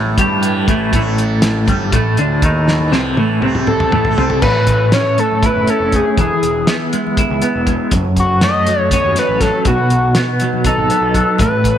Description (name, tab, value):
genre	psychedelic rock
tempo	241 BPM (eighths)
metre	7/8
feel	straight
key	A lydian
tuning	A4 = 439 Hz
part	tonewheel organ	sustained chords	0.0-11.8 s	A3 to A5	-27 LUFS	right 9 dB	slow rotary speaker, overdrive
part	clean electric guitar	riff	0.0-11.8 s	F#2 to G4	-16 LUFS	equal	tremolo, double-tracked left and right
part	fuzz picked electric bass	bass	0.0-11.8 s	E1 to G2	-22 LUFS	equal	overdrive
part	tanpura	drone	0.0-10.2 s	A2 to A3	-24 LUFS	equal	none
part	congas	percussion	0.1-11.6 s	none	-30 LUFS	left 11 dB	none
part	cloth-damped thuddy drum kit	drums	0.2-11.8 s	crash cymbal, hi-hat, kick drum, snare drum, toms	-18 LUFS	equal	none
part	overdriven synth lead	melody	3.7-11.8 s	F#4 to D#5	-16 LUFS	left 1 dB	tape echo
room	moderate echo chamber reverb, RT60 2.5 s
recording	1960s-style stereo with parts hard left and right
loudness	-12 LUFS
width	side -10 dB against mid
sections	0.0-4.4 A section; 4.4-11.8 B section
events	drum fill 2.7-4.4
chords	0.0 A; 6.2 E; 7.9 F#m; 9.7 B